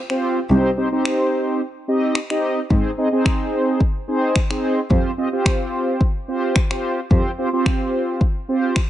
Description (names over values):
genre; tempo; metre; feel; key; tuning
dance-pop; 109 BPM; 4/4; straight; unclear; A4 = 440 Hz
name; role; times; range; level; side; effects
downlifter; sound effects; 0.0-0.5 s; none; -52 LUFS; left 2 dB; none
mellow synth brass; accompaniment; 0.1-8.8 s; C4 to Eb5; -20 LUFS; right 1 dB; chorus, sidechain pumping
deep house drum kit; drums; 0.1-8.9 s; finger snaps, kick drum; -19 LUFS; left 1 dB; none
warm cello; bass; 0.5-7.2 s; C2 to Ab2; -20 LUFS; equal; sidechain pumping
room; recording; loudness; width
light reverb, digital ambience; nothing above 10.5 kHz; -17 LUFS; side -12 dB against mid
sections
0.0-8.9 A section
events
none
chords
0.0 Fsus2; 0.5 Cm; 2.7 Ab; 4.9 Fsus2